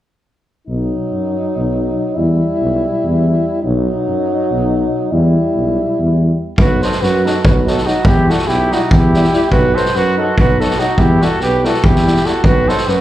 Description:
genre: balkan folk, Balkan brass band.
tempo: 287 BPM (eighths).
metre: 7/8.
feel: straight.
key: B phrygian dominant.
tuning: A4 = 440 Hz.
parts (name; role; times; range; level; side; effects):
warm French horn; accompaniment; 0.7-12.8 s; D#4 to E4; -20 LUFS; left 3 dB; slapback echo.
warm euphonium; accompaniment; 0.7-12.8 s; F#3 to G3; -23 LUFS; right 5 dB; slapback echo.
mellow tuba; bass; 0.7-13.0 s; B1 to F#2; -16 LUFS; equal; none.
mellow flugelhorn; melody; 6.6-13.0 s; F#4 to C5; -17 LUFS; right 1 dB; slapback echo, tape echo.
mellow trumpet; second line; 6.6-13.0 s; D#4 to A4; -20 LUFS; right 2 dB; slapback echo.
street-band drum kit; percussion; 6.6-12.9 s; kick drum, snare drum; -15 LUFS; equal; none.
room: light reverb, small room reverb.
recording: live gig heard through the venue's PA, club reverb.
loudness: -12 LUFS.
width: side -13 dB against mid.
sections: 0.7-6.6 A section; 6.6-13.0 B section.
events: none.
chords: 0.7 B; 2.2 Em; 3.6 B; 5.1 Em; 6.6 B; 8.0 Em; 9.5 B; 11.0 Em; 12.4 B.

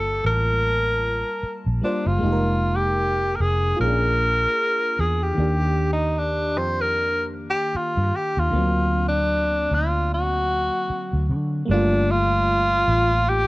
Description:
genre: R&B, neo-soul.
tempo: 76 BPM.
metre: 4/4.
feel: swing 58% on 16ths.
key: G minor.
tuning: A4 = 440 Hz.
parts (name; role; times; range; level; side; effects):
breathy tenor saxophone; melody; 0.0-13.5 s; D4 to C5; -22 LUFS; equal; none.
FM electric piano with soft pad layer; accompaniment; 0.0-13.5 s; D3 to A5; -27 LUFS; equal; chorus.
vintage muted fingered electric bass; bass; 0.0-13.5 s; F1 to D3; -24 LUFS; equal; none.
room: light reverb.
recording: worn, warbling old tape, cassette tape, warbly pitch drift.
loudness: -19 LUFS.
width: side -20 dB against mid.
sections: 0.0-11.7 A section; 11.7-13.5 B section.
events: none.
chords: 0.0 Gm9; 2.2 Fm7; 3.8 Bb7; 5.4 Ebmaj7; 8.5 Daug7; 11.7 Gm9.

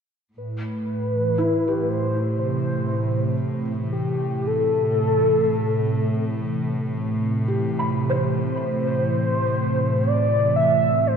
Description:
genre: ambient.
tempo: 59 BPM.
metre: 4/4.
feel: straight.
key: A minor.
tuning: A4 = 440 Hz.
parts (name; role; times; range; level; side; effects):
rich symphonic cello section; bass; 0.3-11.2 s; A2; -30 LUFS; left 1 dB; none.
warm velvety synth lead; melody; 0.4-11.2 s; G4 to E5; -23 LUFS; equal; chorus, tape echo.
warm analog pad; sustained chords; 0.4-11.2 s; A2 to E3; -24 LUFS; right 1 dB; chorus.
felt-muted upright piano; arpeggios; 1.4-11.2 s; E4 to B5; -29 LUFS; equal; tape echo.
room: wet concert hall reverb, RT60 2.4 s.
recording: dark, warm production.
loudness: -20 LUFS.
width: side -6 dB against mid.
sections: 0.4-11.2 A section.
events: none.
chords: 0.4 Am7.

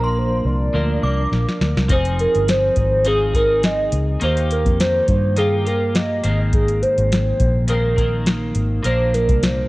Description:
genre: indie pop, bedroom pop.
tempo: 104 BPM.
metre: 4/4.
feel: swing 55% on 16ths.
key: unclear.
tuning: A4 = 440 Hz.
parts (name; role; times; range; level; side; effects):
hollow clarinet-like synth lead; melody; 0.0-9.7 s; Ab4 to Eb5; -20 LUFS; right 1 dB; analog chorus.
synth chime; second line; 0.0-1.3 s; C6 to D6; -28 LUFS; right 1 dB; ensemble chorus, analog chorus, analog delay.
mellow tine electric piano; accompaniment; 0.0-1.9 s; F3 to Bb4; -27 LUFS; right 2 dB; medium stereo tremolo, cassette tape.
twelve-string electric guitar; accompaniment; 0.0-9.7 s; Ab2 to Ab4; -25 LUFS; left 1 dB; lush chorus, vibrato effect.
vintage muted fingered electric bass; bass; 0.0-9.6 s; F1 to G2; -20 LUFS; equal; transformer saturation.
soft vintage rhythm box; drums; 1.3-9.6 s; hi-hat, kick drum, snare drum; -21 LUFS; equal; overdrive.
room: light reverb.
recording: worn, warbling old tape, cassette tape, warbly pitch drift.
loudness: -16 LUFS.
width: side -20 dB against mid.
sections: 0.0-1.9 A section; 1.9-9.7 B section.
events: drum fill 1.3-1.9.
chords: 0.0 Bb; 1.9 Fm7; 4.2 Ebadd9; 6.2 Abadd9; 8.8 Bb.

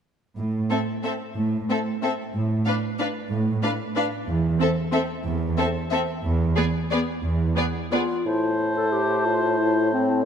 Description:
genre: classical, orchestral ballroom waltz.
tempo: 168-198 BPM.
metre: 3/4.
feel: rubato.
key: A minor.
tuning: A4 = 439 Hz.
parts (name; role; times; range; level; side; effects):
warm chamber cello section; bass; 0.4-7.5 s; E2 to A2; -25 LUFS; right 2 dB; none.
rich chamber violin section; melody; 0.7-8.0 s; D5 to F5; -32 LUFS; left 4 dB; none.
rich chamber violin section; second line; 0.7-8.0 s; G#4 to B4; -31 LUFS; left 2 dB; none.
rich studio viola section; accompaniment; 0.7-8.0 s; B3 to D4; -29 LUFS; equal; none.
mellow clarinet; second line; 7.9-10.2 s; C4 to A4; -23 LUFS; left 4 dB; none.
mellow hollow silver concert flute; second line; 8.3-10.2 s; A5; -28 LUFS; left 4 dB; none.
warm oboe; second line; 8.3-10.2 s; C5; -28 LUFS; equal; none.
mellow bassoon; accompaniment; 8.3-10.3 s; A2; -25 LUFS; right 3 dB; none.
room: moderate concert hall reverb, RT60 2.1 s.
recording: none.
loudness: -22 LUFS.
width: side -8 dB against mid.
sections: 0.4-8.3 A section; 8.3-10.3 B section.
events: none.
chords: 0.4 Am; 2.3 Bm7/A (rootless); 4.3 Am/E (rootless); 6.2 E5; 8.3 Am.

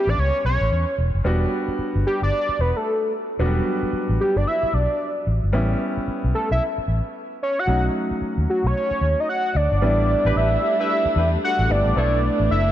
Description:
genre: R&B.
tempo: 112 BPM.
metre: 4/4.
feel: swing 61% on 16ths.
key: unclear.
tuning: A4 = 440 Hz.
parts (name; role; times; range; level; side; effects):
fat analog lead; melody; 0.0-12.7 s; F#4 to F#5; -22 LUFS; equal; chorus, tape echo.
clear baby grand piano; accompaniment; 0.0-12.7 s; F#3 to F#4; -27 LUFS; equal; none.
vintage muted fingered electric bass; bass; 0.1-12.7 s; E1 to E2; -21 LUFS; equal; none.
warm studio string section; sustained chords; 9.8-12.7 s; G3 to D4; -28 LUFS; equal; none.
dark horn section; stabs; 10.2-12.2 s; D4 to C#5; -31 LUFS; left 3 dB; tape echo.
room: moderate lush hall reverb, RT60 2.6 s.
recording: dark, warm production.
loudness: -19 LUFS.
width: side -12 dB against mid.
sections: 0.0-9.8 A section; 9.8-12.7 B section.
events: none.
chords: 0.0 A7; 1.2 Em7; 5.5 A7; 7.7 B9; 9.8 A9sus4; 12.0 Bm11.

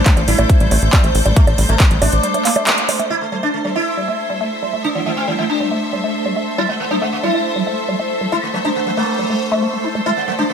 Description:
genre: psychedelic trance.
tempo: 138 BPM.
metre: 4/4.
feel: straight.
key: A minor.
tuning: A4 = 440 Hz.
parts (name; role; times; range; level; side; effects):
evolving wavetable pad; sustained chords; 0.0-10.5 s; C5; -25 LUFS; right 1 dB; ensemble chorus, built-in reverb, phaser, sidechain pumping.
woody wave-folded pluck; riff; 0.0-10.4 s; G3 to E4; -23 LUFS; moving between left 2 dB and right 4 dB; chorus, auto-pan, sidechain pumping, tape echo.
tight sequencer bass; bass; 0.0-2.2 s; A1; -16 LUFS; equal; none.
clear studio string section; texture; 0.0-10.5 s; A3 to G6; -25 LUFS; equal; sidechain pumping.
sitar; melody; 0.1-10.5 s; A2 to E4; -21 LUFS; equal; phaser, sidechain pumping, tape echo.
big-room dance drum kit; drums; 0.1-3.1 s; bongos, handclaps, hi-hat; -18 LUFS; right 2 dB; none.
electronic kick drum; drums; 0.1-1.9 s; none; -13 LUFS; equal; none.
room: moderate lush hall reverb, RT60 1.6 s, digital ambience.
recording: none.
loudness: -14 LUFS.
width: side -7 dB against mid.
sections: 0.0-3.1 A section; 3.1-10.5 B section.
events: break 2.2-3.1; band accent 2.7.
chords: 0.0 A5.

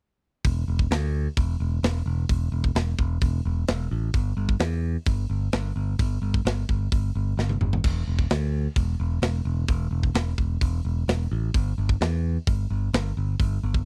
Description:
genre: heavy metal.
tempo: 130 BPM.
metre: 4/4.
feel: straight.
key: E minor.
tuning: A4 = 441 Hz.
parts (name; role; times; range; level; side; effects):
tight metal drum kit; drums; 0.4-13.8 s; crash cymbal, hi-hat, kick drum, snare drum, splash cymbal, toms; -27 LUFS; equal; none.
modern bright picked electric bass; bass; 0.5-13.8 s; E1 to E2; -27 LUFS; equal; none.
room: little or no reverb.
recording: dry, close 1970s-style studio recording.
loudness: -25 LUFS.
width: mono.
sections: 0.4-13.8 A section.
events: drum fill 7.4-7.8.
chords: none.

